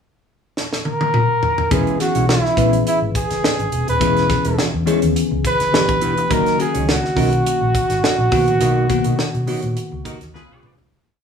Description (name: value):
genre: polished 1980s jazz-funk pop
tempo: 104 BPM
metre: 4/4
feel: swing 54% on 16ths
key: unclear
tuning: A4 = 440 Hz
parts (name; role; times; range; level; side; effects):
- tight funk drum kit; drums; 0.6-10.9 s; hi-hat, kick drum, snare drum, toms; -22 LUFS; equal; none
- warm flugelhorn; melody; 0.9-10.3 s; E4 to B4; -19 LUFS; right 1 dB; none
- bell-like FM electric piano; accompaniment; 1.7-10.9 s; C#3 to B4; -21 LUFS; left 4 dB; chorus
- mellow electric guitar; riff; 1.7-10.8 s; F#3 to C#5; -26 LUFS; right 4 dB; none
- vintage muted fingered electric bass; bass; 1.7-10.9 s; D#1 to B2; -22 LUFS; equal; none
- clear horn section; second line; 10.1-10.8 s; D#4 to B4; -42 LUFS; right 1 dB; none
room: moderate small room reverb, RT60 0.5 s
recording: band playing live in one room, small room reverb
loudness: -15 LUFS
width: side -7 dB against mid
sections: 0.0-1.7 pickup bar; 1.7-10.9 verse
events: drum fill 0.6-1.7, 10.3-10.9; fade-out 8.6-10.9; band accent 8.6-10.9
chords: 0.0 N.C.; 1.7 E6; 5.7 G6; 6.3 F#6; 8.3 Bmaj7; 10.3 C#7